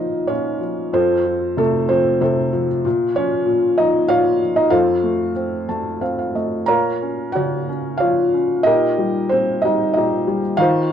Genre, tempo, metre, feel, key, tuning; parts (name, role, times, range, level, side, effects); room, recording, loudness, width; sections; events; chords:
classical, lyrical solo piano; 89-97 BPM; 3/4; rubato; Bb harmonic minor; A4 = 444 Hz
felt-muted upright piano; solo; 0.0-10.9 s; F2 to Bb5; -16 LUFS; equal
light reverb; worn, warbling old tape, cassette tape, warbly pitch drift; -16 LUFS; side -9 dB against mid
0.0-10.9 A section
felt piano fill 5.4-6.7
0.0 Bbmadd9; 0.9 F; 2.8 Bbm; 4.7 F; 6.7 Bbm; 8.7 Eb/Bb